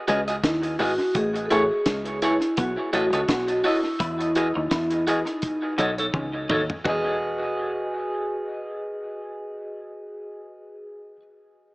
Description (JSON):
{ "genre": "lovers rock reggae", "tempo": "84 BPM", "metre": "4/4", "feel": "swing 56% on 16ths", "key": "E major", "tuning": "A4 = 439 Hz", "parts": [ { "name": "mellow tine electric piano", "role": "accompaniment", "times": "0.1-11.2 s", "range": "E4 to D#5", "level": "-32 LUFS", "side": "left 1 dB", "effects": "medium stereo tremolo, dub echo" }, { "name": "semi-hollow electric guitar", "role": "riff", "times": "0.1-6.6 s", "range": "G#3 to E4", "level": "-33 LUFS", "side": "left 1 dB", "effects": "spring reverb" }, { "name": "electric guitar through a small old amp", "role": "stabs", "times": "0.1-11.2 s", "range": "D#4 to D#5", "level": "-28 LUFS", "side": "right 1 dB", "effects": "dub echo" }, { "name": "deep dub fingered electric bass", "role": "bass", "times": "0.1-11.2 s", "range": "E1 to E2", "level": "-32 LUFS", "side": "equal", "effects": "none" }, { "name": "deep reggae drum kit", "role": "drums", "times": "0.1-7.0 s", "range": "hi-hat, kick drum, snare drum, toms", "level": "-29 LUFS", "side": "equal", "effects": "dub echo" }, { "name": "vibraphone with soft mallets", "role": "melody", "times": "0.5-11.2 s", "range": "D#4 to A4", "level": "-26 LUFS", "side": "equal", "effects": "dub echo" } ], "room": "light reverb, studio reverb", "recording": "small speaker sound", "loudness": "-22 LUFS", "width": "side -23 dB against mid", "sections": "0.0-6.8 A section; 6.8-9.7 B section", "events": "drum fill 6.1-6.8", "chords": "0.0 Emaj9; 1.2 Amaj7; 2.6 B7; 4.0 Emaj9; 5.4 B9; 6.8 Emaj9", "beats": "0.44 | 1.15 1.86 2.58 3.29 | 4.00 4.71 5.42 6.14 | 6.85 7.56 8.28 8.99" }